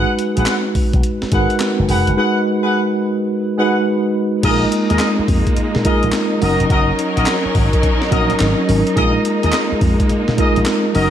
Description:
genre	R&B, new jack swing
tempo	106 BPM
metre	4/4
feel	swing 64% on 16ths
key	unclear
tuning	A4 = 441 Hz
part	mellow tine electric piano	accompaniment	0.0-11.1 s	Gb3 to Cb5	-18 LUFS	right 1 dB	fast stereo tremolo
part	warm horn section	stabs	0.0-11.1 s	Gb4 to Gb5	-22 LUFS	left 1 dB	none
part	slap bass with an envelope filter	bass	0.0-11.1 s	F1 to Bb2	-18 LUFS	equal	none
part	breakbeat sampler-style drum kit	drums	0.2-11.1 s	crash cymbal, handclaps, hi-hat, kick drum, snare drum	-19 LUFS	equal	gated reverb
part	rich studio string section	sustained chords	4.4-11.1 s	Gb3 to Bb4	-22 LUFS	left 1 dB	none
room	light reverb, digital ambience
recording	none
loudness	-14 LUFS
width	side -10 dB against mid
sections	0.0-4.4 A section; 4.4-11.1 B section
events	none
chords	0.0 Abm7; 4.4 Bb7sus4; 6.4 Gb6; 9.0 Bb7sus4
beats	0.47 1.04 1.60 | 2.17 2.74 3.30 3.87 | 4.43 5.00 5.57 6.13 | 6.70 7.26 7.83 8.40 | 8.96 9.53 10.10 10.66

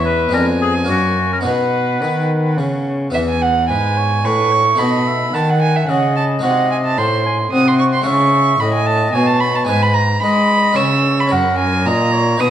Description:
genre	classical, baroque-style sonata movement with continuo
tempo	110 BPM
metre	3/4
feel	straight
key	B major, E major from 3.1 s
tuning	A4 = 440 Hz
part	clear oboe	melody	0.0-12.5 s	F#4 to G#5	-21 LUFS	left 5 dB	none
part	rich violin	second line	0.0-12.5 s	E5 to E6	-17 LUFS	right 4 dB	none
part	harpsichord	accompaniment	0.0-12.5 s	E2 to C#5	-21 LUFS	left 2 dB	none
part	warm cello	bass	0.0-12.5 s	E2 to G#3	-18 LUFS	right 1 dB	none
room	moderate recital hall reverb, RT60 1.3 s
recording	worn, warbling old tape, cassette tape, warbly pitch drift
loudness	-13 LUFS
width	side -10 dB against mid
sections	0.0-3.1 A section; 3.1-12.5 A section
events	none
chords	0.3 Fdim7; 0.9 F#; 1.4 B; 3.1 E; 4.8 B7; 6.4 G#7; 8.1 C#m; 9.7 G#m; 10.8 C#m; 11.3 F#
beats	0.33 0.89 | 1.45 2.02 2.58 | 3.14 3.69 4.24 | 4.79 5.34 5.88 | 6.43 6.97 7.52 | 8.06 8.60 9.14 | 9.69 10.23 10.77 | 11.31 11.86 12.41

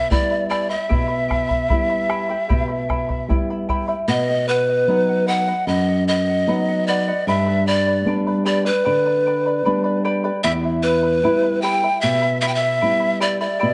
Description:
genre	andean folk, Andean ensemble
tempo	76 BPM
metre	4/4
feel	straight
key	E minor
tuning	A4 = 441 Hz
part	breathy pan flute	melody	0.0-13.7 s	B4 to G5	-22 LUFS	equal	none
part	charango	accompaniment	0.0-13.7 s	E4 to B5	-28 LUFS	equal	none
part	flamenco guitar	accompaniment	0.0-13.7 s	E2 to E4	-25 LUFS	equal	none
part	bombo	percussion	0.1-3.9 s	none	-25 LUFS	equal	none
room	moderate recital hall reverb, RT60 1.4 s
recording	dark, warm production, nothing above 10.5 kHz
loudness	-19 LUFS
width	mono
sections	0.0-4.1 A section; 4.1-13.7 A section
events	none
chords	0.0 Em; 4.1 B; 7.3 G; 10.4 Em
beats	0.11 | 0.90 1.70 2.50 3.29 | 4.09 4.88 5.68 6.47 | 7.26 8.06 8.85 9.65 | 10.44 11.23 12.03 12.82 | 13.61

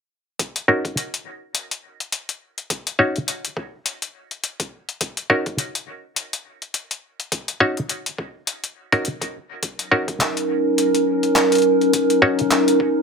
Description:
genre	glitch hop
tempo	104 BPM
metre	4/4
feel	swing 57% on 16ths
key	Eb minor pentatonic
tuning	A4 = 440 Hz
part	boom bap sampler-style drum kit	drums	0.4-12.8 s	handclaps, hi-hat	-23 LUFS	left 2 dB	studio reverb
part	electronic kick drum	drums	0.4-12.9 s	none	-32 LUFS	equal	high-pass filter on kick, studio reverb
part	muted clav	stabs	0.7-12.4 s	Db4 to Db5	-19 LUFS	equal	vintage 12-bit sampler grit, sidechain pumping, low-pass filter, dub echo
part	warbly tape-like pad	sustained chords	9.6-13.0 s	Gb3 to Bb4	-16 LUFS	equal	chorus, built-in reverb, sidechain pumping
room	moderate small room reverb, RT60 0.5 s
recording	none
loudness	-19 LUFS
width	side -5 dB against mid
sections	0.4-13.0 A section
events	none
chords	0.4 Ebm7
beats	| 0.40 0.97 1.55 2.13 | 2.70 3.28 3.86 4.43 | 5.01 5.59 6.17 6.74 | 7.32 7.90 8.47 9.05 | 9.63 10.20 10.78 11.36 | 11.94 12.51

